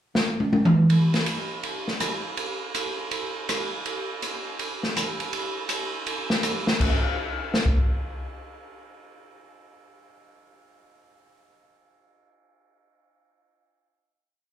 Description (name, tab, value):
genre	jazz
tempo	162 BPM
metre	4/4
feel	swing 64% on 8ths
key	none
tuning	none
part	open jazz drum kit	drums	0.1-7.8 s	crash cymbal, hi-hat, kick drum, ride cymbal, rim click, snare drum, toms	-23 LUFS	equal	none
room	wet club reverb, RT60 0.6 s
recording	live gig heard through the venue's PA, club reverb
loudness	-23 LUFS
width	side -10 dB against mid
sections	0.0-0.9 pickup bar; 0.9-6.8 A section; 6.8-9.8 final hit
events	drum fill 0.2-0.9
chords	none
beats	0.15 0.52 | 0.89 1.26 1.63 2.00 | 2.37 2.74 3.11 3.48 | 3.85 4.22 4.59 4.96 | 5.33 5.70 6.07 6.43 | 6.80 7.17 7.54